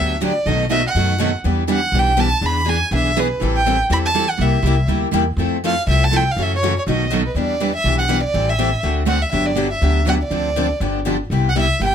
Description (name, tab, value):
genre	acoustic string swing (jazz manouche)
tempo	244 BPM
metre	4/4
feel	swing 54% on 8ths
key	E minor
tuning	A4 = 440 Hz
part	warm violin	melody	0.0-11.9 s	B4 to B5	-20 LUFS	right 2 dB	none
part	picked steel-string acoustic guitar	accompaniment	0.0-11.9 s	B2 to A4	-23 LUFS	left 7 dB	none
part	picked steel-string acoustic guitar	accompaniment	0.0-11.9 s	B2 to B4	-24 LUFS	right 9 dB	none
part	upright bass	bass	0.0-11.9 s	G1 to F#2	-20 LUFS	equal	none
room	light reverb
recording	close, detailed microphones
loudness	-16 LUFS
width	side -8 dB against mid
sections	0.0-7.4 A section; 7.4-11.9 B section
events	none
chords	0.5 B7; 1.4 Em7; 2.4 E7; 3.4 Am7; 4.4 C7; 5.4 Fmaj7; 6.4 F#m7; 6.9 B7; 7.4 Em7; 8.3 Am7; 8.8 D7; 9.3 Gmaj7; 10.3 Dm7; 10.8 G7; 11.3 Cmaj7